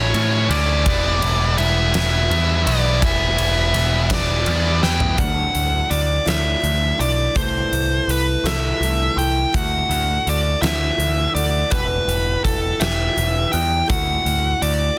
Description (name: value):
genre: quiet-loud alternative rock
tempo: 55 BPM (dotted quarters)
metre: 6/8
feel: straight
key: E dorian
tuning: A4 = 442 Hz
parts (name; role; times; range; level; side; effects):
- dark smooth lead guitar; melody; 0.0-15.0 s; A4 to G5; -23 LUFS; equal; overdrive
- tight distorted guitar; riff; 0.0-5.2 s; E3 to E4; -25 LUFS; equal; distortion
- growling picked electric bass; bass; 0.0-14.9 s; E1 to A2; -24 LUFS; equal; overdrive
- huge arena drum kit; drums; 0.1-14.8 s; hi-hat, kick drum, ride cymbal, snare drum, toms; -26 LUFS; equal; none
- picked old ladder-braced acoustic guitar; arpeggios; 5.2-15.0 s; E2 to A4; -30 LUFS; equal; analog delay
room: little or no reverb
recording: dense, heavily limited modern master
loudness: -19 LUFS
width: mono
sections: 0.0-5.2 A section; 5.2-15.0 B section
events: drum fill 4.8-5.2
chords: 0.0 A; 0.9 Em; 5.2 Dadd9; 7.4 Am/C; 9.5 Dadd9; 11.7 Em; 13.9 Dadd9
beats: | 0.85 1.94 | 3.02 4.10 | 5.18 6.27 | 7.36 8.45 | 9.54 10.62 | 11.71 12.80 | 13.89 14.98